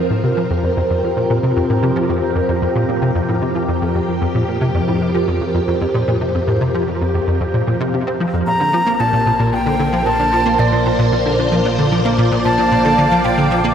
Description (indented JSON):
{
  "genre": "ambient, sequencer-driven space music",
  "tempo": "113 BPM",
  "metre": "4/4",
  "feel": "straight",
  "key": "unclear",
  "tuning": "A4 = 440 Hz",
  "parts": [
    { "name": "phased string machine", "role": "sustained chords", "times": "0.0-13.7 s", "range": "F3 to D5", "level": "-18 LUFS", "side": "equal", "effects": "ensemble chorus, phaser" },
    { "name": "plucky analog bass", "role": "riff", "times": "0.0-13.7 s", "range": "F2 to C4", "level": "-18 LUFS", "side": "equal", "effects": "ensemble chorus, analog delay" },
    { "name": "analog drone", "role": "bass", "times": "0.0-13.7 s", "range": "Bb1 to F2", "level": "-26 LUFS", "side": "equal", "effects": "chorus" },
    { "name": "wooden flute", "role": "melody", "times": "8.5-13.7 s", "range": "D5 to Bb5", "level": "-17 LUFS", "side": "equal", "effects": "analog delay" }
  ],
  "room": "wet huge ambient reverb, RT60 8.2 s",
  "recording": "none",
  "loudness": "-14 LUFS",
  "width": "side -8 dB against mid",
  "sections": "0.0-13.7 A section",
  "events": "fade-in on synth drone 0.0-13.7",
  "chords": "0.0 Fsus4; 8.5 Bbadd9"
}